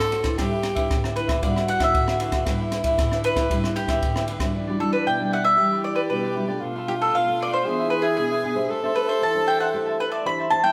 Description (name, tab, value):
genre	samba and choro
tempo	116 BPM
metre	4/4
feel	straight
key	G major, E minor from 4.5 s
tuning	A4 = 441 Hz
part	mandolin	melody	0.0-10.7 s	G4 to B5	-25 LUFS	equal	none
part	breathy tenor saxophone	second line	0.0-10.5 s	D4 to A4	-29 LUFS	equal	none
part	cavaquinho	accompaniment	0.0-10.7 s	D4 to A5	-32 LUFS	equal	none
part	nylon-string guitar	accompaniment	0.0-10.7 s	A2 to C5	-31 LUFS	equal	none
part	open jazz drum kit	drums	0.1-4.5 s	kick drum, ride cymbal, rim click	-27 LUFS	equal	none
room	wet large studio reverb, RT60 1.3 s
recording	band playing live in one room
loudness	-23 LUFS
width	mono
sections	0.0-4.5 A section; 4.5-10.7 B section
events	none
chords	0.4 G6; 4.5 Em9; 6.6 Bm7b5; 7.7 E7; 8.7 Am7